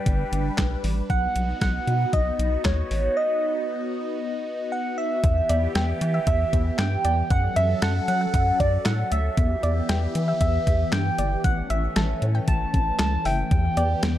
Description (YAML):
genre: synth-pop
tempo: 116 BPM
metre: 4/4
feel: straight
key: E dorian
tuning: A4 = 439 Hz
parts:
  - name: soft struck synth lead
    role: melody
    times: 0.0-14.2 s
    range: C#5 to A5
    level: -26 LUFS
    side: right 1 dB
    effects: chorus, phaser, digital delay
  - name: phased analog pad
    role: sustained chords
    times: 0.0-14.2 s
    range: E3 to B4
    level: -31 LUFS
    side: equal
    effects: phaser, chorus
  - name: rubbery square bass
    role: bass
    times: 0.1-14.2 s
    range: F#1 to F#3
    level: -24 LUFS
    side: equal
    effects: none
  - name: detuned 8-bit digital drum machine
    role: drums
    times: 0.1-14.2 s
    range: handclaps, hi-hat, kick drum, snare drum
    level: -25 LUFS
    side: equal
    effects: none
  - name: soft round pluck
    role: second line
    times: 5.5-14.1 s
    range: D5 to A5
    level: -33 LUFS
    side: left 1 dB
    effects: chorus, digital delay
room: light reverb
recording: dark, warm production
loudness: -21 LUFS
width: side -12 dB against mid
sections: 0.0-5.2 A section; 5.2-14.2 B section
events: break 3.2-5.2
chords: 0.0 G; 1.1 B; 5.2 Em; 7.3 F#m; 9.4 Em; 11.4 A; 13.5 Em